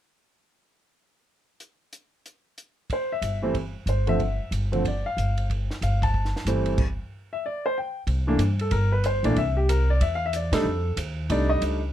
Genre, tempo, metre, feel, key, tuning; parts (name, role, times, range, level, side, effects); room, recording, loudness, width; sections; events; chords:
jazz piano trio; 186 BPM; 4/4; swing 62% on 8ths; C mixolydian; A4 = 440 Hz
compact cocktail drum kit; drums; 1.6-11.7 s; crash cymbal, hi-hat, kick drum, ride cymbal, snare drum; -32 LUFS; right 1 dB
clear concert grand piano; melody; 2.9-11.8 s; D3 to A5; -26 LUFS; equal
upright bass; bass; 3.2-11.9 s; G1 to C3; -25 LUFS; equal
light reverb; -22 LUFS; side -11 dB against mid
1.6-2.9 A section; 2.9-8.1 B section; 8.1-11.9 C section
stop 6.8-8.1; band accent 10.5
1.6 N.C.; 2.9 Fmaj7(no3) (rootless); 8.1 C13; 10.7 F13